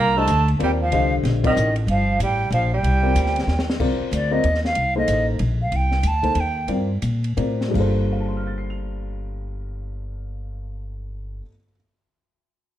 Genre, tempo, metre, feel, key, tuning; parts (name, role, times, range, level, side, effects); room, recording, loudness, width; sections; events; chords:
modal jazz; 159-188 BPM; 3/4; swing 62% on 8ths; A4 = 440 Hz
silver concert flute; melody; 0.0-6.7 s; D5 to Bb5; -23 LUFS; right 1 dB; plate reverb
clear tenor saxophone; second line; 0.0-3.6 s; Eb3 to Bb3; -25 LUFS; right 4 dB
upright bass; bass; 0.0-11.4 s; G1 to Bb2; -22 LUFS; equal
dark upright piano; accompaniment; 0.2-11.8 s; G2 to F7; -26 LUFS; left 3 dB
compact cocktail drum kit; drums; 0.3-7.9 s; crash cymbal, hi-hat, kick drum, ride cymbal, snare drum; -31 LUFS; equal
light reverb; dark, warm production; -18 LUFS; side -12 dB against mid
0.0-3.8 A section; 3.8-7.8 B section; 7.8-10.0 C section
band accent 1.4; drum fill 3.5-3.8; flute solo 3.8-7.8; slowing down 5.7-7.8
0.0 Cm11; 7.8 Gm11